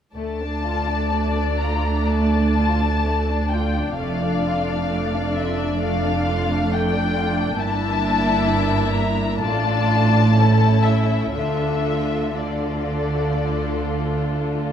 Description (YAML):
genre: classical, slow romantic movement for string orchestra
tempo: 64 BPM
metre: 4/4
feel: uneven beats, rubato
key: D minor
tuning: A4 = 440 Hz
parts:
  - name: muted studio violin section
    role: second line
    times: 0.1-14.7 s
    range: A3 to E5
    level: -26 LUFS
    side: left 5 dB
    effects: none
  - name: muted studio cello section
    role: bass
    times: 0.1-14.7 s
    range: D2 to D3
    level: -25 LUFS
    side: right 2 dB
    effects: none
  - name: muted studio double bass section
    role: bass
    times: 0.1-14.7 s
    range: F1 to D2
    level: -24 LUFS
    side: right 2 dB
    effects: none
  - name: muted studio violin section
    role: melody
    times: 0.2-14.5 s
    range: D5 to Bb5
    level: -26 LUFS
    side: left 6 dB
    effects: none
  - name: muted studio viola section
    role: accompaniment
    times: 0.2-14.7 s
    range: A3 to D4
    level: -25 LUFS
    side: right 2 dB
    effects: none
room: moderate recital hall reverb, RT60 1.5 s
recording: none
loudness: -18 LUFS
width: side -9 dB against mid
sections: 0.1-14.7 A section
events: none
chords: 0.1 Dm; 4.0 Dm/F; 7.6 Em7b5/G; 9.4 Dm/A; 10.4 A; 11.4 Dm